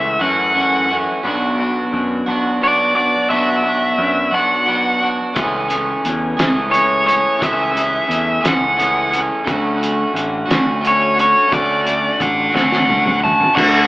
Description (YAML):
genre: indie rock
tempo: 58 BPM (dotted quarters)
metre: 6/8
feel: straight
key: unclear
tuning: A4 = 435 Hz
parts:
  - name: nasal lead guitar with a parked wah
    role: melody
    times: 0.0-13.9 s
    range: C#5 to A5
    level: -15 LUFS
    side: equal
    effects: overdrive
  - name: electric guitar at the edge of break-up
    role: riff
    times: 0.0-13.9 s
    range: B2 to G#4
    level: -22 LUFS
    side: left 2 dB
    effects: none
  - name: electric guitar at the edge of break-up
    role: riff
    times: 0.0-13.9 s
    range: E3 to G#4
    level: -20 LUFS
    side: right 2 dB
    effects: none
  - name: growling picked electric bass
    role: bass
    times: 0.0-13.8 s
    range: A1 to F#2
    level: -24 LUFS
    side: equal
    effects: overdrive
  - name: cloth-damped thuddy drum kit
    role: drums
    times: 5.4-13.7 s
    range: crash cymbal, hi-hat, kick drum, snare drum, toms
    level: -19 LUFS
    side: equal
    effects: none
room: moderate large studio reverb, RT60 1.4 s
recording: band playing live in one room, AM radio sound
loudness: -14 LUFS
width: side -20 dB against mid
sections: 0.0-13.6 A section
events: drum fill 12.5-13.6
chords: 0.0 F#m7; 1.2 Bm; 5.4 Amaj7/C#; 9.5 Dmaj7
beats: 0.22 | 1.25 2.28 | 3.31 4.34 | 5.37 6.39 | 7.42 8.44 | 9.47 10.49 | 11.51 12.54 | 13.56